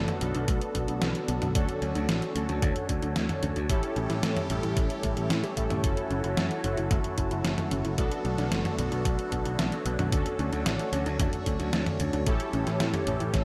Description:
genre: synthwave.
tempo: 112 BPM.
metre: 4/4.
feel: straight.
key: B minor.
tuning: A4 = 440 Hz.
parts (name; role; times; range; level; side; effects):
phased analog pad; sustained chords; 0.0-13.4 s; D3 to C#5; -39 LUFS; equal; phaser, chorus, sidechain pumping.
warbly dusty pluck; arpeggios; 0.0-13.4 s; A3 to E5; -40 LUFS; equal; chorus, delay.
analog synth brass; stabs; 0.0-13.4 s; B3 to A4; -35 LUFS; equal; chorus, cassette tape, delay.
picked electric bass; bass; 0.0-13.4 s; F#1 to A2; -34 LUFS; equal; none.
detuned 8-bit digital drum machine; drums; 0.1-13.4 s; hi-hat, snare drum, toms; -34 LUFS; equal; overdrive, gated reverb.
electronic kick drum; drums; 0.5-13.4 s; none; -32 LUFS; equal; overdrive.
room: light reverb.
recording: none.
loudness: -28 LUFS.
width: mono.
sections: 0.0-13.4 A section.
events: none.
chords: 0.0 Bm7; 1.6 Dmaj7; 3.7 A7; 5.8 F#m7; 8.0 Bm7; 10.1 Dmaj7; 12.3 A7.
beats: 0.48 1.02 | 1.55 2.09 2.62 3.16 | 3.69 4.23 4.77 5.30 | 5.84 6.37 6.91 7.45 | 7.98 8.52 9.05 9.59 | 10.12 10.66 11.20 11.73 | 12.27 12.80 13.34.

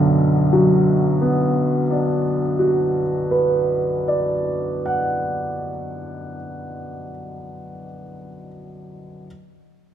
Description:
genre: classical, romantic nocturne for solo piano.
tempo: 27 BPM (dotted quarters).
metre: 12/8.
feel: rubato.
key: B minor.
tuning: A4 = 440 Hz.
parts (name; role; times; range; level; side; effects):
bright grand piano; solo; 0.0-9.3 s; B1 to F#5; -19 LUFS; equal; none.
room: moderate concert hall reverb, RT60 2.2 s.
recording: none.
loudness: -17 LUFS.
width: side -10 dB against mid.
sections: 0.0-7.0 A section.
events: none.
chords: 0.0 Bm.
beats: 0.28 2.52 4.74.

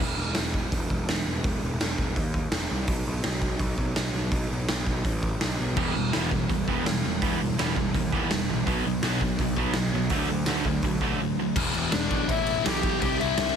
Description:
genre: punk rock.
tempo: 166 BPM.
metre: 4/4.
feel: straight.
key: E minor.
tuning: A4 = 440 Hz.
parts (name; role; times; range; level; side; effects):
fuzz picked electric bass; bass; 0.0-13.5 s; E1 to D#2; -30 LUFS; equal; overdrive.
raw garage drum kit; drums; 0.3-13.5 s; crash cymbal, hi-hat, kick drum, snare drum; -28 LUFS; equal; none.
crunchy overdriven guitar; riff; 5.8-11.6 s; B2 to B3; -29 LUFS; right 13 dB; none.
sludgy distorted guitar; riff; 5.8-13.6 s; E2 to D4; -30 LUFS; left 14 dB; overdrive.
lead guitar through a small cranked amp; melody; 11.9-13.6 s; D4 to G5; -27 LUFS; left 2 dB; overdrive.
room: little or no reverb.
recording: heavily compressed radio sound.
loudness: -24 LUFS.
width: side -7 dB against mid.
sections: 0.0-11.6 A section; 11.6-13.6 B section.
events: none.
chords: 0.0 N.C.; 5.8 Em; 8.7 B5; 10.1 D; 11.6 Em; 13.0 C.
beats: 0.35 0.72 1.08 | 1.44 1.80 2.16 2.52 | 2.88 3.24 3.60 3.97 | 4.33 4.69 5.05 5.41 | 5.77 6.14 6.50 6.86 | 7.22 7.58 7.95 8.31 | 8.67 9.03 9.39 9.76 | 10.12 10.48 10.84 11.20 | 11.57 11.93 12.29 12.65 | 13.01 13.37.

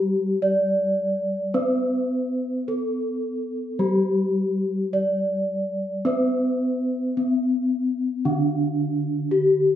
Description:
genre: gamelan.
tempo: 53-58 BPM.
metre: 4/4.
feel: straight.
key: unclear.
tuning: A4 = 439 Hz.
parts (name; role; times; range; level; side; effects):
gamelan-type bronze metallophone; melody; 0.0-9.8 s; C4-40c to D5; -23 LUFS; left 1 dB; none.
gamelan-type bronze metallophone; accompaniment; 0.0-9.8 s; D3 to C4-40c; -25 LUFS; equal; none.
room: wet recital hall reverb, RT60 1.3 s.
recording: minimal, uncompressed stereo recording.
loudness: -21 LUFS.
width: side -10 dB against mid.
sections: 0.0-9.8 A section.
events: none.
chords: none.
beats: 0.43 | 1.56 2.68 3.81 4.93 | 6.06 7.17 8.25 9.30.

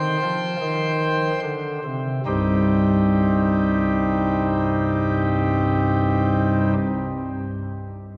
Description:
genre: classical, chorale-style piece for pipe organ.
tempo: 36 BPM.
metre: 4/4.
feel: straight.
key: C minor.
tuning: A4 = 442 Hz.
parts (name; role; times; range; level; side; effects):
pipe organ, cornet; solo; 0.0-6.7 s; C1 to C6; -22 LUFS; equal; none.
room: wet cathedral reverb, RT60 4.5 s.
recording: none.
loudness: -21 LUFS.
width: mono.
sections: 0.0-2.3 A section; 2.3-8.2 B section.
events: slowing down 0.0-2.3.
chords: 0.0 Cm.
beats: 0.62 | 2.27 3.95 5.62.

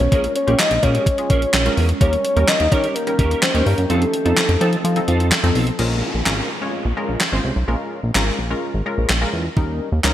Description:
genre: dance-pop.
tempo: 127 BPM.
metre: 4/4.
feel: straight.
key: Bb dorian.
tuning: A4 = 440 Hz.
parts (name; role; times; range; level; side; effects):
soft octave-layered synth lead; melody; 0.0-5.3 s; A4 to Eb5; -21 LUFS; left 2 dB; chorus, tremolo.
glassy FM pad; sustained chords; 0.0-5.8 s; Eb3 to A4; -29 LUFS; right 2 dB; ensemble chorus, built-in reverb, sidechain pumping.
clean electric guitar; riff; 0.0-5.7 s; C4 to Bb4; -27 LUFS; right 4 dB; ensemble chorus.
chorused synth bass; bass; 0.0-10.1 s; Ab1 to F3; -19 LUFS; equal; sidechain pumping.
gated 80s digital drum machine; drums; 0.0-10.1 s; crash cymbal, handclaps, hi-hat, kick drum, snare drum; -20 LUFS; equal; gated reverb, gated reverb snare, overdrive.
funky polysynth comp; accompaniment; 0.1-10.1 s; F3 to Db5; -25 LUFS; left 1 dB; chorus, sidechain pumping.
downlifter; sound effects; 5.8-9.6 s; none; -31 LUFS; equal; none.
room: light reverb, digital ambience.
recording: bright 1980s-style digital production.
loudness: -16 LUFS.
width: side -12 dB against mid.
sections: 0.0-5.8 A section; 5.8-10.1 B section.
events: kick muted 3.9-5.8.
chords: 0.0 Bbm7; 2.0 Eb7; 3.9 F7; 5.8 Bbm7; 9.6 Eb7.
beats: | 0.12 0.59 1.06 1.54 | 2.01 2.48 2.96 3.43 | 3.90 4.37 4.84 5.32 | 5.79 6.26 6.73 7.21 | 7.68 8.15 8.62 9.10 | 9.57 10.04.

